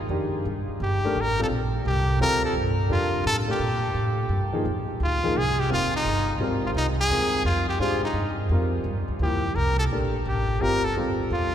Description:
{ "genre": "modal jazz", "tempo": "171 BPM", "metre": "3/4", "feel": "swing 66% on 8ths", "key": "unclear", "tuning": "A4 = 439 Hz", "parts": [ { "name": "warm baby grand piano", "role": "accompaniment", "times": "0.1-11.5 s", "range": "Eb3 to C5", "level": "-28 LUFS", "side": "left 1 dB", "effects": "none" }, { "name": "upright bass", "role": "bass", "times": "0.1-11.5 s", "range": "F1 to Bb2", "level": "-26 LUFS", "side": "equal", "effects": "none" }, { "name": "clear trumpet", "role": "melody", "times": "0.8-11.5 s", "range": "Eb4 to Bb4", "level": "-26 LUFS", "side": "equal", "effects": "none" } ], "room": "wet cathedral reverb, RT60 6.4 s", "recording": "recorded in a church or concert hall", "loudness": "-22 LUFS", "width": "side -9 dB against mid", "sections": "0.0-11.5 A section", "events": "none", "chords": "0.4 Gm9; 4.6 Fmadd9; 8.9 Gm9", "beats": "0.10 | 0.45 0.79 1.14 | 1.49 1.84 2.19 | 2.54 2.89 3.24 | 3.59 3.94 4.29 | 4.64 5.00 5.35 | 5.70 6.05 6.40 | 6.75 7.10 7.45 | 7.80 8.15 8.51 | 8.86 9.21 9.56 | 9.91 10.26 10.61 | 10.96 11.31" }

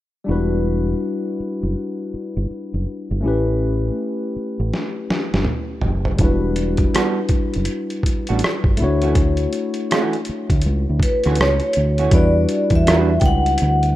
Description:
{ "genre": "R&B, neo-soul", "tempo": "81 BPM", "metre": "4/4", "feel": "swing 63% on 16ths", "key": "E dorian", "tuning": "A4 = 439 Hz", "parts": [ { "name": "barky tine electric piano", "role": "accompaniment", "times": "0.2-14.0 s", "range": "G3 to C#5", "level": "-23 LUFS", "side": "left 2 dB", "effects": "overdrive, lush chorus" }, { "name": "fingered electric bass", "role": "bass", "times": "0.3-13.9 s", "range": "E1 to E2", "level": "-19 LUFS", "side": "equal", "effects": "none" }, { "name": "boom bap sampler-style drum kit", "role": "drums", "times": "4.7-14.0 s", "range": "hi-hat, kick drum, rim click, snare drum, toms", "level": "-20 LUFS", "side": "equal", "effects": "none" }, { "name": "vintage hollow-body jazz guitar", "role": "second line", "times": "6.9-13.1 s", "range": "E3 to B4", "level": "-23 LUFS", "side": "right 6 dB", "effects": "none" }, { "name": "vibraphone with medium hard mallets", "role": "melody", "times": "11.0-14.0 s", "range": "B4 to G5", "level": "-20 LUFS", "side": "equal", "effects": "none" } ], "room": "digital ambience", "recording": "rough home demo mix", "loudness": "-17 LUFS", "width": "side -14 dB against mid", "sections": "0.3-12.1 A section; 12.1-14.0 B section", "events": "drum fill 4.7-6.2", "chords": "0.3 Em9; 3.2 A9; 6.2 Em9; 8.8 Dmaj9; 12.1 Em9", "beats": "| 0.27 1.00 1.75 2.49 | 3.23 3.97 4.71 5.45 | 6.19 6.93 7.67 8.41 | 9.15 9.89 10.63 11.38 | 12.12 12.86 13.60" }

